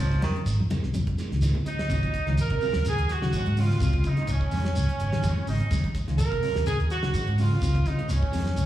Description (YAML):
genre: afrobeat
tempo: 126 BPM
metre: 4/4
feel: swing 55% on 16ths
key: Eb dorian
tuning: A4 = 440 Hz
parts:
  - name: semi-hollow electric guitar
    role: arpeggios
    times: 0.0-8.7 s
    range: C3 to Eb3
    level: -33 LUFS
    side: left 4 dB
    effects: slapback echo
  - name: electric guitar through a small old amp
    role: stabs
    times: 0.0-8.5 s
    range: Eb3 to F4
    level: -38 LUFS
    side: right 5 dB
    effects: phaser, slapback echo
  - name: vintage muted fingered electric bass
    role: bass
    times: 0.0-8.7 s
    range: Ab1 to Eb3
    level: -26 LUFS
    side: equal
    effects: none
  - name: cloth-damped thuddy drum kit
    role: drums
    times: 0.1-8.7 s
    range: hi-hat, kick drum, snare drum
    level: -32 LUFS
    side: equal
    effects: none
  - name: congas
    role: percussion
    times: 0.2-1.9 s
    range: none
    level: -32 LUFS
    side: equal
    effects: slapback echo
  - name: shekere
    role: percussion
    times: 0.2-8.7 s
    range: none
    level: -32 LUFS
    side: equal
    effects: slapback echo
  - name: warm horn section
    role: melody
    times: 1.7-8.7 s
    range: Db4 to Bb4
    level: -30 LUFS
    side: right 3 dB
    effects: slapback echo
  - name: edgy alto saxophone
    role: second line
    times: 1.7-8.7 s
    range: Db4 to Bb4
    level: -39 LUFS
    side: right 2 dB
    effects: slapback echo
room: light reverb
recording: live gig heard through the venue's PA, recital hall reverb, small room ambience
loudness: -23 LUFS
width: side -13 dB against mid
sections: 0.0-1.9 A section; 1.9-8.7 B section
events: drum fill 0.9-1.9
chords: 0.0 Dbmaj9; 1.9 Ebm11; 3.8 Dbmaj9; 5.7 Ebm11; 7.6 Dbmaj9